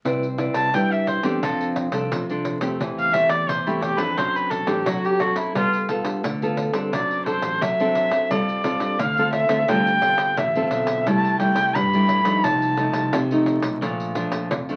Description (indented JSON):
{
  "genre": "samba and choro",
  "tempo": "87 BPM",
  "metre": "4/4",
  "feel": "straight",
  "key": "C major",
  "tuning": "A4 = 440 Hz",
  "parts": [
    { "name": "modern bright fingered electric bass", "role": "bass", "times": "0.0-14.8 s", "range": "G1 to F#3", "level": "-32 LUFS", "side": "equal", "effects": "none" },
    { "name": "nylon-string guitar", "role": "accompaniment", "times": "0.1-14.8 s", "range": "F2 to D5", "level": "-26 LUFS", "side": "equal", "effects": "none" },
    { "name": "pandeiro", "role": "percussion", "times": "0.1-14.8 s", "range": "none", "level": "-32 LUFS", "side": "equal", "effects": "none" },
    { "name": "rich erhu", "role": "melody", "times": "0.5-13.1 s", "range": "E4 to B5", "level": "-23 LUFS", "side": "equal", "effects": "none" }
  ],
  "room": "wet small room reverb, RT60 0.5 s",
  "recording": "very old 78 rpm record, vinyl crackle",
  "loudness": "-22 LUFS",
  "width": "mono",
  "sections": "0.1-14.8 A section",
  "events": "erhu solo 0.1-14.8",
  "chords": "0.1 Cmaj9; 1.4 F6; 2.8 Am7/E; 4.2 D7; 5.6 G9; 6.9 D7; 8.3 G9sus4; 11.1 C6; 12.4 F7/C; 13.8 Bbmaj7"
}